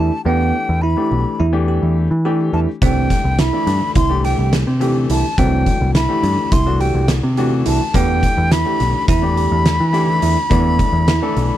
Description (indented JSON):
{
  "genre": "progressive instrumental, band music in an uneven meter",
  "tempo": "211 BPM (eighths)",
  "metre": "9/8",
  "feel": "straight",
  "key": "unclear",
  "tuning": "A4 = 436 Hz",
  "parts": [
    { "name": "bright wooden flute", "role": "melody", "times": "0.0-11.6 s", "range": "G5 to C6", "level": "-20 LUFS", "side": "left 2 dB", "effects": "none" },
    { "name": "clear grand piano", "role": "accompaniment", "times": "0.0-11.6 s", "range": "E3 to A4", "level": "-23 LUFS", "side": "left 6 dB", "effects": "none" },
    { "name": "bell-like tine electric piano", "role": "arpeggios", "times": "0.0-11.4 s", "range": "B3 to G4", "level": "-22 LUFS", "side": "moving between right 6 dB and right 14 dB", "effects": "auto-pan" },
    { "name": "picked electric bass", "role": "bass", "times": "0.0-11.5 s", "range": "B1 to E3", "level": "-17 LUFS", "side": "equal", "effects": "none" },
    { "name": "oversized low-tuned drum kit", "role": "drums", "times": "2.8-11.5 s", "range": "hi-hat, kick drum, snare drum", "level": "-20 LUFS", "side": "equal", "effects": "none" }
  ],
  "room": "little or no reverb",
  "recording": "none",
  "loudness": "-14 LUFS",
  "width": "side -12 dB against mid",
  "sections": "0.0-11.6 A section",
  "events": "none",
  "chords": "0.0 Em; 2.8 C; 7.9 Em"
}